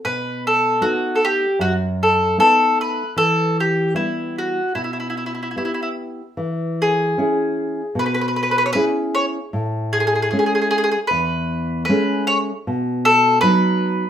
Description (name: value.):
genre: italian folk.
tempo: 76 BPM.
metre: 4/4.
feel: swing 53% on 8ths, rubato.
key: E harmonic minor, E major from 6.4 s.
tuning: A4 = 440 Hz.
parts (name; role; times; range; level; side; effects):
mandolin; melody; 0.0-14.1 s; E4 to C#5; -18 LUFS; left 1 dB; none.
nylon-string guitar; accompaniment; 0.0-14.0 s; E2 to G#4; -22 LUFS; equal; none.
room: wet studio reverb, RT60 0.7 s.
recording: rough home demo mix.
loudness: -17 LUFS.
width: side -9 dB against mid.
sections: 0.0-6.4 A section; 6.4-14.1 B section.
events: none.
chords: 0.1 B7; 3.2 Em; 6.4 E6; 9.5 Amaj7; 12.6 B.